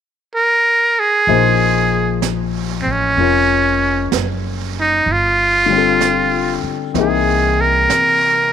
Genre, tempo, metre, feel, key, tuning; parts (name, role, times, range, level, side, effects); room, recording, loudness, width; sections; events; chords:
jazz ballad; 63 BPM; 4/4; swing 67% on 8ths; Bb minor; A4 = 440 Hz
trumpet with metal mute; melody; 0.3-8.5 s; C4 to Bb4; -14 LUFS; right 2 dB
warm upright piano; accompaniment; 1.3-8.5 s; D3 to Db5; -19 LUFS; left 13 dB
upright bass; bass; 1.3-8.5 s; F1 to C3; -22 LUFS; right 2 dB
jazz brush drum kit; drums; 1.3-8.5 s; brushed snare drum, hi-hat, snare drum; -26 LUFS; right 13 dB
light reverb; 1960s-style stereo with parts hard left and right; -13 LUFS; side -8 dB against mid
0.0-1.3 A section; 1.3-8.5 B section
0.0 N.C.; 1.3 Bbm9; 5.1 G9sus4; 6.9 C7alt